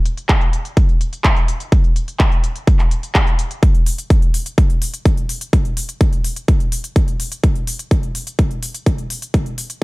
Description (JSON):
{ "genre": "EDM", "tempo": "126 BPM", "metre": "4/4", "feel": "straight", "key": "none", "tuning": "none", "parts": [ { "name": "big-room dance drum kit", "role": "drums", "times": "0.1-9.8 s", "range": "handclaps, hi-hat", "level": "-23 LUFS", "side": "equal", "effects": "overdrive, low-pass filter on hats, studio reverb, low-pass filter on snare" }, { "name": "electronic kick drum", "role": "drums", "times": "0.3-9.4 s", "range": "none", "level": "-14 LUFS", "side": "equal", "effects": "overdrive, studio reverb" } ], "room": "digital ambience", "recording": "dark, warm production", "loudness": "-15 LUFS", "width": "side -22 dB against mid", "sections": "0.0-3.6 A section; 3.6-9.8 B section", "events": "build-up 3.6-9.8; filter sweep 3.6-9.8", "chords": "none", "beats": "0.29 0.77 1.25 | 1.72 2.20 2.67 3.15 | 3.63 4.10 4.58 5.05 | 5.53 6.01 6.48 6.96 | 7.44 7.91 8.39 8.87 | 9.34" }